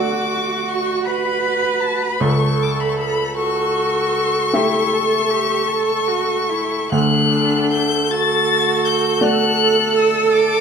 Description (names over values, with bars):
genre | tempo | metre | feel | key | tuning
classical, slow romantic movement for piano quartet | 47-54 BPM (dotted quarters) | 12/8 | rubato | D major | A4 = 440 Hz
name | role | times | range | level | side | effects
clear violin | melody | 0.0-10.6 s | A5 to A6 | -21 LUFS | left 8 dB | none
rich cello | second line | 0.0-10.6 s | D4 to B4 | -20 LUFS | right 4 dB | none
rich viola | accompaniment | 0.0-10.6 s | F#4 to A4 | -22 LUFS | right 2 dB | none
warm baby grand piano | accompaniment | 0.0-10.6 s | C#2 to E5 | -22 LUFS | equal | none
room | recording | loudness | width
moderate recital hall reverb, RT60 1.5 s | none | -15 LUFS | side -6 dB against mid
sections
0.0-10.6 A section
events
none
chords
0.0 D; 2.2 A7/C#; 6.9 D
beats
1.06 | 2.21 3.37 4.54 5.69 | 6.92 8.09 9.22 10.33